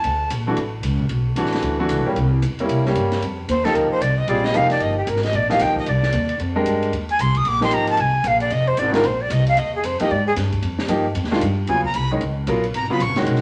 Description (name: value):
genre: modal jazz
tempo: 227 BPM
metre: 4/4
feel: swing 61% on 8ths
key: F dorian from 3.2 s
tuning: A4 = 439 Hz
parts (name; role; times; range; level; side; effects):
- breathy bright jazz flute; melody; 0.0-0.3, 3.5-13.2 s; G4 to Eb6; -22 LUFS; equal; none
- upright bass; bass; 0.0-13.4 s; F1 to Ab2; -25 LUFS; equal; none
- compact cocktail drum kit; drums; 0.0-13.4 s; hi-hat, kick drum, ride cymbal, snare drum; -33 LUFS; equal; none
- bright grand piano; accompaniment; 0.5-13.4 s; C#3 to Bb4; -24 LUFS; equal; none
room: wet studio reverb, RT60 0.8 s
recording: none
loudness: -20 LUFS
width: mono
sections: 0.0-3.2 A section; 3.2-11.7 B section; 11.7-13.4 B section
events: flute solo 3.2-13.4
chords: 0.0 Bm11; 2.2 C7b9; 3.2 F9sus4; 11.7 G#m11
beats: | 0.04 0.30 0.57 0.83 | 1.10 1.36 1.63 1.90 | 2.16 2.42 2.69 2.96 | 3.22 3.48 3.75 4.01 | 4.28 4.54 4.81 5.07 | 5.34 5.60 5.87 6.13 | 6.40 6.66 6.93 7.19 | 7.46 7.72 7.98 8.25 | 8.51 8.78 9.04 9.30 | 9.57 9.83 10.10 10.36 | 10.62 10.89 11.15 11.42 | 11.68 11.95 12.21 12.47 | 12.74 13.00 13.27